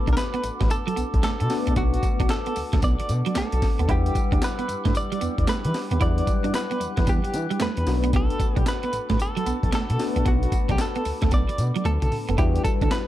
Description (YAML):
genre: R&B, new jack swing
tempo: 113 BPM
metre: 4/4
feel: swing 64% on 16ths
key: E minor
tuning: A4 = 441 Hz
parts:
  - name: direct-recorded clean electric guitar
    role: melody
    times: 0.0-13.1 s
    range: F#4 to D5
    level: -30 LUFS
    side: equal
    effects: tremolo
  - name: tine electric piano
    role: accompaniment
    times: 0.0-13.1 s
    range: F#3 to F#5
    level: -31 LUFS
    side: left 5 dB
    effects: phaser
  - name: mellow large flute ensemble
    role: sustained chords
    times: 0.0-12.3 s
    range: G4 to F#6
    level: -36 LUFS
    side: right 1 dB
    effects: none
  - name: clean electric guitar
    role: riff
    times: 0.1-12.9 s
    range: F#3 to E4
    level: -30 LUFS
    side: right 7 dB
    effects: ensemble chorus
  - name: smooth gliding synth bass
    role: bass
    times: 0.1-12.9 s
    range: F#1 to E3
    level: -25 LUFS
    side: equal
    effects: none
  - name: breakbeat sampler-style drum kit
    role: drums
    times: 0.1-13.1 s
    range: handclaps, hi-hat, kick drum, snare drum, tambourine, toms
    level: -24 LUFS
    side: equal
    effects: none
room: digital ambience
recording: dark, warm production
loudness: -21 LUFS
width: side -14 dB against mid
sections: 0.0-12.4 A section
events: drum fill 11.8-12.4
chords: 0.0 Bm7; 3.9 Em9; 7.9 Bm7; 12.4 Em9